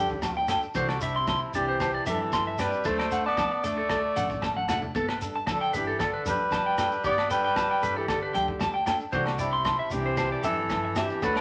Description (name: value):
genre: highlife guitar band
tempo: 114 BPM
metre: 4/4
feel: straight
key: G major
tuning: A4 = 439 Hz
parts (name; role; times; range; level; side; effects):
- breathy trumpet; melody; 0.0-11.4 s; E4 to D5; -32 LUFS; equal; none
- growling tenor saxophone; second line; 0.0-11.4 s; C3 to B3; -37 LUFS; equal; none
- clean electric guitar; accompaniment; 0.0-11.4 s; E3 to A4; -38 LUFS; equal; none
- electric guitar at the edge of break-up; arpeggios; 0.0-11.4 s; G4 to C6; -31 LUFS; equal; none
- upright bass; bass; 0.0-11.4 s; G1 to G2; -40 LUFS; equal; none
- crunchy breakbeat drum kit; drums; 0.1-11.4 s; hi-hat, kick drum, rim click; -38 LUFS; equal; none
- agogo bells; percussion; 0.2-11.4 s; none; -38 LUFS; equal; none
- congas; percussion; 0.2-11.3 s; none; -42 LUFS; equal; none
- shekere; percussion; 0.2-11.4 s; none; -44 LUFS; equal; none
room: moderate studio reverb, RT60 0.9 s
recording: none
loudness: -27 LUFS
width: mono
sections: 0.0-11.4 A section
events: drum fill 4.5-4.9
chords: 0.0 Gsus2; 0.7 Cadd9; 2.8 D; 4.9 Gadd9; 9.1 Cadd9